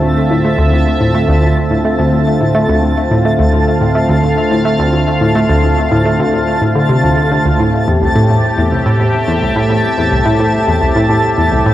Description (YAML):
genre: ambient, sequencer-driven space music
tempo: 107 BPM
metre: 4/4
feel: straight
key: D minor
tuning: A4 = 439 Hz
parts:
  - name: sweeping resonant pad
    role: sustained chords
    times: 0.0-11.7 s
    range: A2 to F5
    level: -14 LUFS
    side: equal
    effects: chorus
  - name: analog pluck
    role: riff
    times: 0.0-11.7 s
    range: C2 to A3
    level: -13 LUFS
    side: equal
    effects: chorus, ping-pong delay
  - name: twinkling granular texture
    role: texture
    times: 0.0-11.7 s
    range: A5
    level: -19 LUFS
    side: equal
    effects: built-in reverb
room: wet plate reverb, RT60 2.7 s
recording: worn, warbling old tape, cassette tape, warbly pitch drift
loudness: -10 LUFS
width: side -13 dB against mid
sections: 0.0-11.7 A section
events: none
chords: 0.0 Dm7; 7.6 Am7